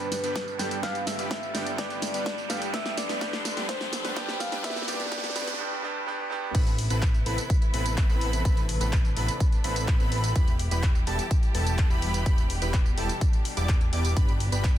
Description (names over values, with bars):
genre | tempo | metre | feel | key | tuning
EDM, festival progressive house | 126 BPM | 4/4 | straight | A minor | A4 = 441 Hz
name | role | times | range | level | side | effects
soft struck synth lead | melody | 0.0-5.6 s | B4 to G5 | -34 LUFS | left 1 dB | chorus, digital delay
bright baby grand piano | accompaniment | 0.0-6.6 s | G2 to G4 | -33 LUFS | right 3 dB | sidechain pumping, digital delay
warm studio string section | sustained chords | 0.0-14.8 s | B2 to C6 | -38 LUFS | equal | sidechain pumping
supersaw chords | riff | 0.0-14.7 s | G3 to D5 | -35 LUFS | right 1 dB | sidechain pumping, digital delay
big-room dance drum kit | drums | 0.0-14.7 s | crash cymbal, handclaps, hi-hat, snare drum, tambourine | -34 LUFS | equal | none
riser | sound effects | 0.0-5.6 s | none | -37 LUFS | right 1 dB | none
electronic kick drum | drums | 0.4-14.7 s | none | -23 LUFS | equal | high-pass filter on kick
wide unison lead | arpeggios | 6.5-14.7 s | A5 to D6 | -35 LUFS | equal | lush chorus, sidechain pumping, digital delay
fat analog bass | bass | 6.5-14.8 s | E1 to A1 | -28 LUFS | equal | sidechain pumping
room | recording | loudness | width
light reverb, digital ambience | dense, heavily limited modern master, high-pass filter | -24 LUFS | side -12 dB against mid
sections
0.0-6.5 A section; 6.5-14.8 B section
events
build-up 0.0-6.5; drum fill 0.0-5.6; riser 0.0-5.6; drop 6.5-14.8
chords
0.0 G; 2.7 F; 6.5 Amadd9; 10.4 Em; 14.2 G